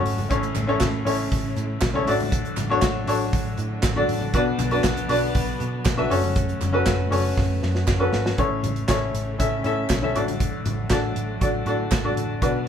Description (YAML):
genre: piano-driven pop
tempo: 119 BPM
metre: 4/4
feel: straight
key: unclear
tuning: A4 = 436 Hz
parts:
  - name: clear upright piano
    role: accompaniment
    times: 0.0-12.7 s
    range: A2 to E5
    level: -24 LUFS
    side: left 2 dB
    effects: none
  - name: warm studio string section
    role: sustained chords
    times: 0.0-12.7 s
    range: C#3 to B3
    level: -34 LUFS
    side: right 1 dB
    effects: none
  - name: vintage muted picked electric bass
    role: bass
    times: 0.0-12.6 s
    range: F#1 to B2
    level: -27 LUFS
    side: right 1 dB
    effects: none
  - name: modern studio drum kit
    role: drums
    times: 0.1-12.5 s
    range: handclaps, hi-hat, kick drum, snare drum, toms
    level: -25 LUFS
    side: right 1 dB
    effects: none
  - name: group handclap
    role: percussion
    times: 0.6-12.0 s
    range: none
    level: -37 LUFS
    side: right 4 dB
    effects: none
room: moderate studio reverb, RT60 0.7 s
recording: band playing live in one room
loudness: -20 LUFS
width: side -8 dB against mid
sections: 0.0-8.4 A section; 8.4-12.7 B section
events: drum fill 7.4-8.4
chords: 0.3 A; 2.1 D/A; 4.3 Bm; 6.1 F#m; 8.4 A; 10.1 D/A